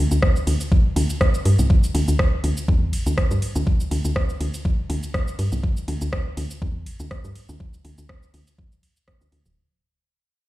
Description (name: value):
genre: minimal techno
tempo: 122 BPM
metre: 4/4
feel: swing 55% on 16ths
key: unclear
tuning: A4 = 441 Hz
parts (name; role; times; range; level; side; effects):
- woody FM bass; bass; 0.0-9.5 s; D1 to G2; -21 LUFS; equal; sidechain pumping
- garage drum kit; drums; 0.1-9.5 s; hi-hat, ride cymbal, rim click, shaker; -29 LUFS; right 1 dB; none
- electronic kick drum; drums; 0.2-9.2 s; none; -19 LUFS; equal; none
room: digital ambience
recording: played on a big sound system in a bare room, large studio reverb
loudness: -19 LUFS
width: side -17 dB against mid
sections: 0.0-9.6 A section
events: drop 0.0-9.6; fade-out 1.7-9.6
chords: none